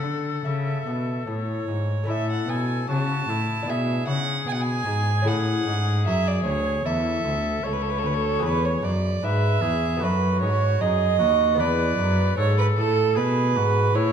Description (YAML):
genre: classical, baroque-style sonata movement with continuo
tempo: 76 BPM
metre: 4/4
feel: straight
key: A major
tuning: A4 = 440 Hz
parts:
  - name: clear oboe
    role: melody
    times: 0.0-14.1 s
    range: E4 to C#5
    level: -30 LUFS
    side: left 10 dB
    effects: none
  - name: rich violin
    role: second line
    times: 0.0-14.1 s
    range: A4 to A5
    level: -25 LUFS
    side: right 8 dB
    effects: none
  - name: lute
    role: accompaniment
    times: 0.0-14.1 s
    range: D2 to B4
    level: -30 LUFS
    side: left 3 dB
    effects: none
  - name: rich cello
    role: bass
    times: 0.0-14.1 s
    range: C#2 to D3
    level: -24 LUFS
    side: equal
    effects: none
room: moderate recital hall reverb, RT60 1.6 s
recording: dark, warm production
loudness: -21 LUFS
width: side -8 dB against mid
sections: 0.0-2.1 A section; 2.1-14.1 B section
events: none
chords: 0.0 A; 3.7 E7/B; 5.3 A; 8.4 E; 10.0 B7/F#; 11.6 E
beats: 0.44 1.27 | 2.09 2.89 3.69 4.47 | 5.27 6.06 6.85 7.64 | 8.44 9.23 10.02 10.81 | 11.60 12.38 13.17 13.95